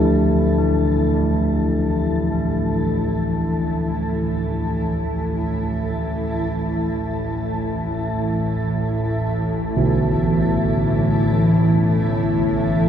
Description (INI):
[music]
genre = dark ambient drone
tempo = free time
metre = none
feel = none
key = unclear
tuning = A4 = 442 Hz
[part]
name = granular cloud pad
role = sustained chords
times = 0.0-12.9 s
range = E3 to A5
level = -23 LUFS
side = equal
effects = built-in reverb
[part]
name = carillon bells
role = arpeggios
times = 0.0-12.9 s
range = B2 to E4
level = -22 LUFS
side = equal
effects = ping-pong delay
[part]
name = bowed-like drone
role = drone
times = 2.1-12.9 s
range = A1 to A2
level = -25 LUFS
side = equal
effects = built-in reverb
[part]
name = bronze singing bowl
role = texture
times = 0.0-12.9 s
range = A3 to A4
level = -27 LUFS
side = equal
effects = none
[sound]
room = wet cathedral reverb, RT60 5.3 s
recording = in a vast, echoing space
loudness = -18 LUFS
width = side -9 dB against mid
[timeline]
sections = 0.0-12.9 A section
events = fade-in on synth drone 0.0-12.9; fade-in on ambient pad 0.0-12.9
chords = 0.0 A5